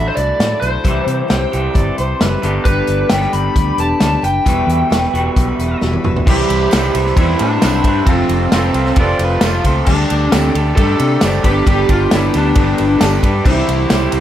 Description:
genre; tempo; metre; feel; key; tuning
folk rock and heartland rock; 133 BPM; 4/4; straight; unclear; A4 = 440 Hz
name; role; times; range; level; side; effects
lead guitar through a small cranked amp; melody; 0.0-14.2 s; C4 to B5; -19 LUFS; equal; overdrive, digital delay
picked steel-string acoustic guitar; accompaniment; 0.0-14.2 s; C3 to C5; -22 LUFS; left 5 dB; none
electric guitar through a small old amp; riff; 0.0-14.2 s; E2 to G4; -20 LUFS; right 2 dB; none
fingered electric bass; bass; 0.0-14.2 s; E1 to C3; -18 LUFS; equal; none
natural country drum kit; drums; 0.2-14.2 s; crash cymbal, hi-hat, kick drum, ride cymbal, snare drum, toms; -17 LUFS; equal; none
overdriven harmonica; second line; 1.3-2.5, 9.0-9.7 s; F4 to G5; -24 LUFS; right 2 dB; none
hand-pumped harmonium; sustained chords; 2.7-14.2 s; C4 to B5; -27 LUFS; right 2 dB; none
bright concert grand piano; accompaniment; 6.3-14.2 s; D4 to D5; -27 LUFS; right 3 dB; none
tambourine; percussion; 6.7-14.0 s; none; -33 LUFS; right 7 dB; none
room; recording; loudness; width
light reverb; none; -12 LUFS; side -11 dB against mid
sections
0.0-6.3 A section; 6.3-14.2 B section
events
drum fill 5.8-6.3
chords
0.0 Dadd9; 0.8 C; 2.4 G; 4.5 Emadd9; 6.3 C; 8.1 F; 9.9 Dsus4; 11.4 G; 13.5 C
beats
0.39 | 0.85 1.30 1.75 2.20 | 2.66 3.11 3.56 4.01 | 4.46 4.92 5.37 5.82 | 6.27 6.72 7.17 7.62 | 8.07 8.52 8.97 9.42 | 9.87 10.32 10.77 11.22 | 11.67 12.12 12.56 13.01 | 13.45 13.90

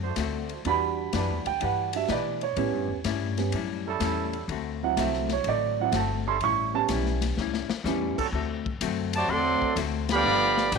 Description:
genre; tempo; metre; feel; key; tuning
jazz, big band swing; 125 BPM; 4/4; swing 68% on 8ths; unclear; A4 = 440 Hz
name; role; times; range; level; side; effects
archtop guitar, miked and amplified; accompaniment; 0.0-10.8 s; A2 to B4; -33 LUFS; left 14 dB; none
warm trombone section; sustained chords; 0.0-10.2 s; F3 to C5; -34 LUFS; right 10 dB; none
upright bass; bass; 0.0-10.8 s; G1 to B2; -32 LUFS; left 2 dB; none
swinging big-band drum kit; drums; 0.2-10.8 s; crash cymbal, hi-hat, kick drum, ride cymbal, snare drum; -34 LUFS; left 8 dB; none
dark upright piano; accompaniment; 0.7-8.2 s; F#3 to C#6; -27 LUFS; right 14 dB; none
clear trombone section; second line; 9.1-10.8 s; C3 to G4; -30 LUFS; right 12 dB; none
clear trumpet section; melody; 9.2-10.8 s; F4 to C6; -23 LUFS; equal; none
room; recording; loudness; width
moderate spring reverb, RT60 1.5 s, small room ambience; 1960s-style stereo with parts hard left and right; -24 LUFS; side -5 dB against mid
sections
0.0-8.3 A section; 8.3-10.8 B section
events
upright piano solo 0.0-8.3; drum fill 7.4-7.9; band accent 10.0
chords
0.0 D7; 0.7 Em7; 2.6 A7; 4.5 D7; 6.4 A7; 8.3 D7; 10.2 G7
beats
0.17 | 0.65 1.13 1.61 2.09 | 2.57 3.05 3.53 4.01 | 4.50 4.97 5.46 5.93 | 6.42 6.89 7.38 7.85 | 8.33 8.81 9.29 9.77 | 10.25 10.73

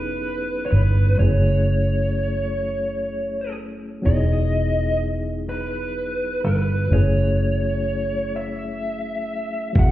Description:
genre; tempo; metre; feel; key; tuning
slow six-eight R&B; 42 BPM (dotted quarters); 6/8; straight; F# dorian; A4 = 441 Hz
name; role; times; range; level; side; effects
smooth overdriven lead guitar; melody; 0.0-9.9 s; B4 to F#5; -25 LUFS; equal; digital delay
overdriven tine electric piano; accompaniment; 0.0-9.9 s; F#3 to A4; -28 LUFS; left 2 dB; fast tremolo
vintage muted fingered electric bass; bass; 0.0-9.9 s; E1 to G1; -20 LUFS; equal; none
dusty soul sampler-style drum kit; drums; 9.8-9.9 s; hi-hat, kick drum; -16 LUFS; equal; overdrive
room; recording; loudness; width
little or no reverb; heard muffled through a wall, stone room reverb, EQ; -19 LUFS; side -14 dB against mid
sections
0.0-9.9 A section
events
none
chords
0.0 Emaj9; 1.2 F#m9; 4.0 Emaj9; 6.9 F#m9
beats
| 1.18 2.61 | 4.04 5.47 | 6.90 8.33 | 9.76

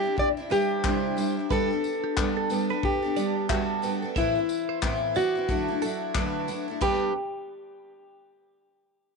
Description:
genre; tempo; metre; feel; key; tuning
acoustic pop; 90 BPM; 4/4; swing 60% on 16ths; G major; A4 = 444 Hz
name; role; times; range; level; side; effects
fingerpicked plugged-in steel-string acoustic guitar; melody; 0.0-7.1 s; E4 to D5; -28 LUFS; left 1 dB; none
picked twelve-string acoustic guitar; accompaniment; 0.0-7.1 s; A2 to A4; -28 LUFS; equal; none
direct-recorded clean electric guitar; arpeggios; 0.0-7.1 s; G4 to E5; -35 LUFS; right 13 dB; phaser
modern studio drum kit; drums; 0.2-7.0 s; crash cymbal, handclaps, kick drum, tambourine; -31 LUFS; left 2 dB; none
room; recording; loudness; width
light reverb, small room ambience; 1960s-style stereo, nothing above 10.5 kHz; -24 LUFS; side -4 dB against mid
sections
0.0-6.8 A section; 6.8-9.2 B section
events
none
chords
0.0 Cadd9; 1.5 Gadd9; 4.2 Amadd9; 5.5 Dadd9; 6.8 Gadd9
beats
0.18 0.84 | 1.50 2.17 2.83 3.49 | 4.16 4.82 5.49 6.15 | 6.81

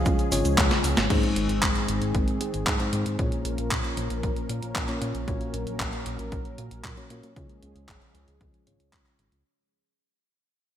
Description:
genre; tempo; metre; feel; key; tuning
italo disco; 115 BPM; 4/4; straight; unclear; A4 = 440 Hz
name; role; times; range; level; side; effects
clear baby grand piano; melody; 0.0-0.5 s; F5; -41 LUFS; equal; none
warm analog pad; sustained chords; 0.0-9.4 s; Eb3 to Bb4; -32 LUFS; equal; chorus
mellow tine electric piano; stabs; 0.0-9.4 s; Ab2 to Db5; -31 LUFS; left 3 dB; low-pass filter, ping-pong delay
chorused synth bass; bass; 0.0-9.4 s; Ab1 to Bb2; -31 LUFS; equal; tube saturation
clean 12-bit digital drum machine; drums; 0.1-9.4 s; cabasa, crash cymbal, handclaps, hi-hat, snare drum; -28 LUFS; equal; overdrive, gated reverb
electronic kick drum; drums; 0.1-9.0 s; none; -28 LUFS; equal; none
room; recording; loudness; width
moderate lush hall reverb, RT60 1.9 s; bright 1980s-style digital production; -24 LUFS; side -10 dB against mid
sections
0.0-1.1 A section; 1.1-9.4 B section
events
drum fill 0.6-1.1; fade-out 1.1-9.4; filter sweep on tine electric piano 1.1-9.4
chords
0.0 Db; 1.1 Ab; 3.2 Bbm; 5.3 Gb/Bb; 7.4 Db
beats
0.06 0.58 | 1.10 1.62 2.15 2.67 | 3.19 3.71 4.23 4.75 | 5.28 5.80 6.32 6.84 | 7.36 7.88 8.41 8.93

